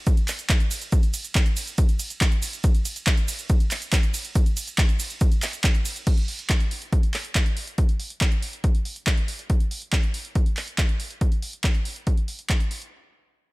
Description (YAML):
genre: trance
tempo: 140 BPM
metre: 4/4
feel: straight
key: none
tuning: none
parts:
  - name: electronic kick drum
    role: drums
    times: 0.1-12.6 s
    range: none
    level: -20 LUFS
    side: equal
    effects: none
  - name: punchy analog drum machine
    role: drums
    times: 0.1-12.9 s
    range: crash cymbal, handclaps, hi-hat, ride cymbal, shaker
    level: -28 LUFS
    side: right 1 dB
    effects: overdrive
room: little or no reverb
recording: none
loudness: -21 LUFS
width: side -22 dB against mid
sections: 0.0-6.1 A section; 6.1-12.9 B section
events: drop 0.0-6.1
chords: none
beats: 0.07 0.50 | 0.93 1.35 1.78 2.21 | 2.64 3.07 3.50 3.92 | 4.35 4.78 5.21 5.64 | 6.07 6.50 6.92 7.35 | 7.78 8.21 8.64 9.07 | 9.50 9.93 10.35 10.78 | 11.21 11.64 12.07 12.50